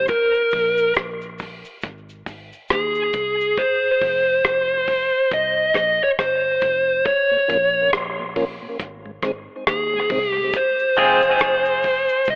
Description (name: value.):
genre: dub reggae.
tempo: 69 BPM.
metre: 4/4.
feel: swing 60% on 16ths.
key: F minor.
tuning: A4 = 440 Hz.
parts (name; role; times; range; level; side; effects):
dark smooth lead guitar; melody; 0.0-12.4 s; Ab4 to Eb5; -20 LUFS; equal; overdrive, tape echo.
vintage muted fingered electric bass; bass; 0.0-12.4 s; F1 to Eb2; -41 LUFS; equal; none.
damped 70s drum kit; drums; 0.1-12.4 s; hi-hat, kick drum, rim click; -28 LUFS; equal; none.
cabasa; percussion; 0.1-3.6, 10.5-12.4 s; none; -52 LUFS; equal; none.
mellow tonewheel organ; accompaniment; 7.3-10.4 s; Ab2 to Db4; -31 LUFS; equal; slow rotary speaker, tape echo.
clean electric guitar; accompaniment; 11.0-11.2 s; Ab3 to Ab4; -21 LUFS; equal; tape echo.
room: moderate spring reverb, RT60 2.6 s.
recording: telephone sound.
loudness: -20 LUFS.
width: mono.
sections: 0.0-12.4 A section.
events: break 0.0-10.5; part muted 3.6-10.5.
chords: 0.1 N.C.; 1.8 Ab; 3.6 F5; 5.3 C5; 7.1 Bbm; 8.8 Ab; 10.5 Fm.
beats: | 0.09 0.96 1.83 2.70 | 3.57 4.44 5.31 6.18 | 7.05 7.92 8.79 9.66 | 10.53 11.40 12.27.